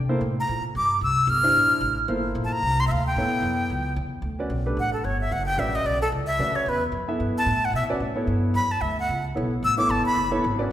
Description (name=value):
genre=modal jazz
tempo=223 BPM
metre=4/4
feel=swing 58% on 8ths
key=D major from 4.2 s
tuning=A4 = 438 Hz
part: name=upright bass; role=bass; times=0.0-10.7 s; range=F#1 to C3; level=-27 LUFS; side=equal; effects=none
part: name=warm baby grand piano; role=accompaniment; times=0.1-10.7 s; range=C#3 to E5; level=-28 LUFS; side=equal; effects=none
part: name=breathy bright jazz flute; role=melody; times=0.4-10.3 s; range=A4 to F6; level=-23 LUFS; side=equal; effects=none
room=wet concert hall reverb, RT60 2.0 s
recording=recorded in a church or concert hall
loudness=-21 LUFS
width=side -11 dB against mid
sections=0.0-4.2 A section; 4.2-10.7 B section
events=flute solo 4.2-10.7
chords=0.0 C13sus4; 3.2 A13; 4.2 Dmaj9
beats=0.21 0.48 0.75 | 1.02 1.29 1.55 1.82 | 2.09 2.36 2.63 2.90 | 3.17 3.44 3.71 3.98 | 4.24 4.51 4.78 5.05 | 5.32 5.59 5.86 6.13 | 6.40 6.67 6.94 7.21 | 7.48 7.75 8.02 8.29 | 8.55 8.82 9.09 9.36 | 9.63 9.90 10.17 10.44